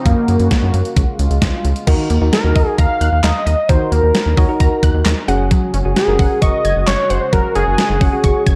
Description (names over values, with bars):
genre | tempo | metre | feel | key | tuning
synth-pop | 132 BPM | 4/4 | straight | unclear | A4 = 440 Hz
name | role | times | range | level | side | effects
unison lead | melody | 0.0-8.4 s | Bb3 to F5 | -20 LUFS | equal | delay
sweeping resonant pad | sustained chords | 0.0-1.9, 5.5-8.6 s | Db3 to Gb4 | -29 LUFS | equal | chorus
rubbery square bass | bass | 0.1-8.6 s | Gb1 to Gb2 | -19 LUFS | equal | none
clean 12-bit digital drum machine | drums | 0.1-8.6 s | crash cymbal, handclaps, hi-hat, kick drum, snare drum | -19 LUFS | equal | overdrive
soft electric-piano-like synth keys | accompaniment | 1.9-8.6 s | Db4 to Db5 | -24 LUFS | equal | chorus
unison pluck | arpeggios | 1.9-8.6 s | Eb3 to Ab6 | -27 LUFS | equal | delay
room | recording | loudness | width
moderate digital room reverb, RT60 1.2 s, digital ambience | dark, warm production | -15 LUFS | mono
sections
0.0-1.9 A section; 1.9-8.6 B section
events
none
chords
0.1 Gb; 1.0 Db; 1.9 Ebm; 5.3 Gbsus2